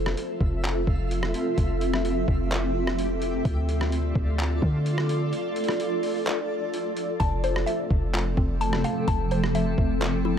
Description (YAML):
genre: hip hop, atmospheric cloud-rap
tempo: 128 BPM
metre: 4/4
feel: half-time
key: unclear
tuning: A4 = 440 Hz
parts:
  - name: granular cloud pad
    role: sustained chords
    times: 0.0-10.4 s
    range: C3 to E5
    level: -27 LUFS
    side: equal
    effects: built-in reverb, sidechain pumping
  - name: warm 808-style bass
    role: bass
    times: 0.0-10.4 s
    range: E1 to D3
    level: -27 LUFS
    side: equal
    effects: none
  - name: twinkling granular texture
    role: texture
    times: 0.0-7.2 s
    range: A3 to E5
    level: -37 LUFS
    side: right 1 dB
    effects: built-in reverb
  - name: trip hop sampler-style drum kit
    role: drums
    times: 0.1-10.1 s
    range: handclaps, hi-hat, kick drum, rim click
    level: -28 LUFS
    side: equal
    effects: overdrive
  - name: mallet-like synth pluck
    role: arpeggios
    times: 7.2-10.4 s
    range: C4 to A5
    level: -30 LUFS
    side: left 2 dB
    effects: chorus, phaser, ping-pong delay
room: little or no reverb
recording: none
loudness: -23 LUFS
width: side -8 dB against mid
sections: 0.0-7.2 A section; 7.2-10.4 B section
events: break 5.3-7.2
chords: 0.0 Fmaj7; 3.5 Dm; 7.2 Fmaj7